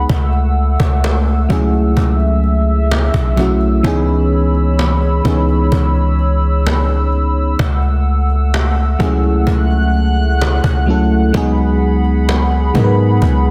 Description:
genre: contemporary R&B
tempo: 64 BPM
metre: 4/4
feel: straight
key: unclear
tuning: A4 = 440 Hz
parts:
  - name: mellow FM electric piano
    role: accompaniment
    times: 0.0-13.5 s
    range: E3 to B4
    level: -20 LUFS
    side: equal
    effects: chorus
  - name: hollow soft pad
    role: sustained chords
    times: 0.0-13.5 s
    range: A3 to F#6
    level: -24 LUFS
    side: equal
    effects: chorus
  - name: warm 808-style bass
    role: bass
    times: 0.0-13.5 s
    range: B1 to G#2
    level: -16 LUFS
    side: equal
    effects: none
  - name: cajon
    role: drums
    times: 0.1-13.5 s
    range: none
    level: -25 LUFS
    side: equal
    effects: none
room: little or no reverb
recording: dense, heavily limited modern master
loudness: -14 LUFS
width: mono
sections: 0.0-13.5 A section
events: none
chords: 0.1 F#m7/C#; 3.8 C#m7; 7.6 F#m7/C#; 11.3 G#m7/C#

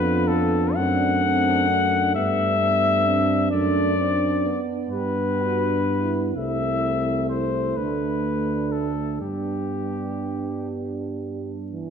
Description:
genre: classical, hymn-like piece for brass band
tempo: 43 BPM (dotted quarters)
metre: 6/8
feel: uneven beats, rubato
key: G major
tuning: A4 = 440 Hz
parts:
  - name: mellow cornet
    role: melody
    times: 0.0-10.7 s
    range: G4 to F#5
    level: -24 LUFS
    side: left 5 dB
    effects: none
  - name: mellow French horn section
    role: second line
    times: 0.0-11.9 s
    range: D4 to G4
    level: -28 LUFS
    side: right 9 dB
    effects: none
  - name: dark euphonium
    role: accompaniment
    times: 0.0-11.9 s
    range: A3 to D4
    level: -29 LUFS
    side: left 4 dB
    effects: none
  - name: mellow euphonium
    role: accompaniment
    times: 0.0-11.9 s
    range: E3 to C4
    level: -31 LUFS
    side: right 4 dB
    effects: none
  - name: mellow tuba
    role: bass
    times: 0.0-11.9 s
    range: C2 to G2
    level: -27 LUFS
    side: right 1 dB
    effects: none
room: moderate scoring stage reverb, RT60 1.7 s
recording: dark, warm production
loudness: -20 LUFS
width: side -7 dB against mid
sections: 0.0-11.9 A section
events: none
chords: 0.0 Bm7b5/F; 0.8 D7/F#; 2.2 G; 3.5 D7/F#; 4.9 G; 6.4 C; 7.8 D5; 9.2 G

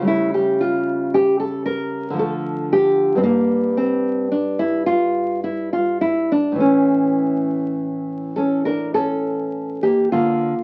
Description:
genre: classical, baroque-style dance for nylon-string guitar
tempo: 50-57 BPM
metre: 3/4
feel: rubato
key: unclear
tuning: A4 = 439 Hz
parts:
  - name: nylon-string guitar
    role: solo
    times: 0.0-10.6 s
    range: G2 to Bb4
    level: -20 LUFS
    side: equal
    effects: none
room: moderate studio reverb, RT60 0.6 s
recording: very old 78 rpm record, vinyl crackle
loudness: -20 LUFS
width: mono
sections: 0.0-10.1 A section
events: none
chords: 0.1 A7/C#; 2.2 Dm; 3.2 N.C.; 6.6 A; 10.1 Bb

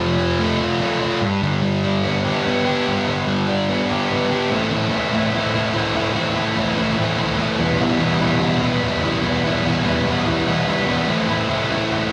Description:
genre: rock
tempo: 146 BPM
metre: 4/4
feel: straight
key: A minor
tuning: A4 = 438 Hz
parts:
  - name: sludgy distorted guitar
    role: solo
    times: 0.0-12.1 s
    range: E2 to G4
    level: -19 LUFS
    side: equal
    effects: overdrive
room: moderate studio reverb, RT60 0.5 s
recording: band playing live in one room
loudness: -19 LUFS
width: mono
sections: 0.0-4.5 A section; 4.5-12.1 B section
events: none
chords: 0.0 F; 1.2 G; 4.5 Am; 7.6 Em; 11.1 Am

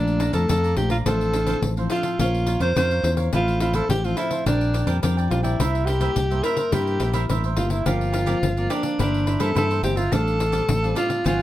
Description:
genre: samba and choro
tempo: 106 BPM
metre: 4/4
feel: straight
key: F major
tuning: A4 = 440 Hz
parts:
  - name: breathy alto saxophone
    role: melody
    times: 0.0-11.4 s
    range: D4 to C5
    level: -24 LUFS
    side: equal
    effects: plate reverb
  - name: cavaquinho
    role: accompaniment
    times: 0.0-11.4 s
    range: D4 to Bb5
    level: -30 LUFS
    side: right 4 dB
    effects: none
  - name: nylon-string guitar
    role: accompaniment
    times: 0.0-11.4 s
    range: F2 to C5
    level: -30 LUFS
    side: left 3 dB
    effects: none
  - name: fingered electric bass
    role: bass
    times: 0.0-11.4 s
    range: G1 to G2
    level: -23 LUFS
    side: equal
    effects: none
  - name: pandeiro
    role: percussion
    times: 0.1-11.4 s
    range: none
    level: -28 LUFS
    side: left 3 dB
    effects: none
room: light reverb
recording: dark, warm production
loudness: -19 LUFS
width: side -14 dB against mid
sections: 0.0-11.4 A section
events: none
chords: 0.0 Bbmaj7; 1.1 Dm9/A; 2.2 Bbmadd9; 3.3 Fmaj7/A; 4.5 Bb69; 5.6 C7; 7.9 Gm7; 9.0 C7/G; 10.1 F69/A

